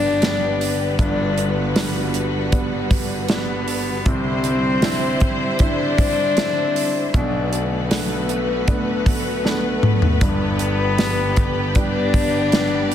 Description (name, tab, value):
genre	pop ballad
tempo	78 BPM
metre	4/4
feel	straight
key	G major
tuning	A4 = 440 Hz
part	warm cello	melody	0.0-12.9 s	A3 to D4	-23 LUFS	left 3 dB	ping-pong delay
part	clear concert grand piano	accompaniment	0.0-12.9 s	G1 to E4	-24 LUFS	right 1 dB	none
part	rich symphonic string section	sustained chords	0.0-12.9 s	D3 to C5	-24 LUFS	left 2 dB	none
part	modern studio drum kit	drums	0.2-12.9 s	hi-hat, kick drum, snare drum, toms	-21 LUFS	equal	none
part	warm studio violin section	second line	11.8-12.9 s	B3 to D5	-28 LUFS	left 1 dB	none
room	moderate concert hall reverb, RT60 2.0 s, small room ambience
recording	dense, heavily limited modern master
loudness	-17 LUFS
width	side -10 dB against mid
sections	0.0-12.9 A section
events	drum fill 9.4-10.2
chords	0.0 G; 4.1 Cadd9; 7.1 Bm7; 10.2 G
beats	0.22 | 0.99 1.76 2.53 3.29 | 4.06 4.83 5.60 6.37 | 7.14 7.91 8.68 9.45 | 10.22 10.99 11.76 12.53